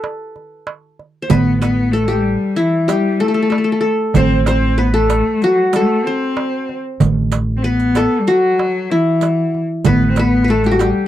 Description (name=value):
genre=Turkish makam ensemble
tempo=189 BPM (eighths)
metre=9/8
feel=straight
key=A makam nikriz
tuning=A4 = 439 Hz
part: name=qanun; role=melody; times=0.0-11.1 s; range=E4 to C5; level=-17 LUFS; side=left 1 dB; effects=none
part: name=darbuka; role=percussion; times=0.0-11.0 s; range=none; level=-19 LUFS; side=right 5 dB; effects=none
part: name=clear cello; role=second line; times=1.3-11.1 s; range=E3 to C4+20c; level=-18 LUFS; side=left 2 dB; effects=none
part: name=upright bass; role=bass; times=1.3-10.9 s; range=A1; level=-17 LUFS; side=right 1 dB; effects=none
part: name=riq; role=percussion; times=1.3-11.0 s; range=none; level=-26 LUFS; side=right 11 dB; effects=none
room=light reverb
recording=dry, close 1970s-style studio recording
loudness=-13 LUFS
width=side -12 dB against mid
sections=0.0-1.3 A section; 1.3-11.1 B section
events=none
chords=none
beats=0.04 0.35 0.67 0.99 | 1.30 1.62 1.94 2.25 2.57 2.89 3.21 3.52 3.84 | 4.16 4.47 4.79 5.11 5.42 5.74 6.06 6.37 6.69 | 7.01 7.32 7.64 7.96 8.27 8.59 8.91 9.22 9.54 | 9.86 10.18 10.49 10.81